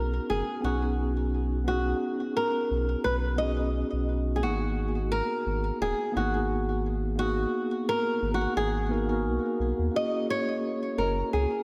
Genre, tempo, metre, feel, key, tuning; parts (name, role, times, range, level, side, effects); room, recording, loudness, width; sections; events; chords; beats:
sunset chillout; 87 BPM; 4/4; swing 55% on 16ths; G# minor; A4 = 440 Hz
flamenco guitar; melody; 0.0-11.6 s; F#4 to D#5; -32 LUFS; equal; delay
mellow tine electric piano; accompaniment; 0.0-11.6 s; A#3 to A#4; -33 LUFS; equal; delay
warm sub bass; bass; 0.0-11.5 s; D#1 to D#2; -32 LUFS; equal
wet lush hall reverb, RT60 2.5 s; dreamy mix soaked in reverb; -28 LUFS; mono
0.0-9.9 A section; 9.9-11.6 B section
0.0 B6; 4.4 G#m9; 9.9 F#9
0.29 0.98 | 1.67 2.36 3.05 3.74 | 4.43 5.12 5.81 6.50 | 7.19 7.88 8.56 9.26 | 9.94 10.63 11.32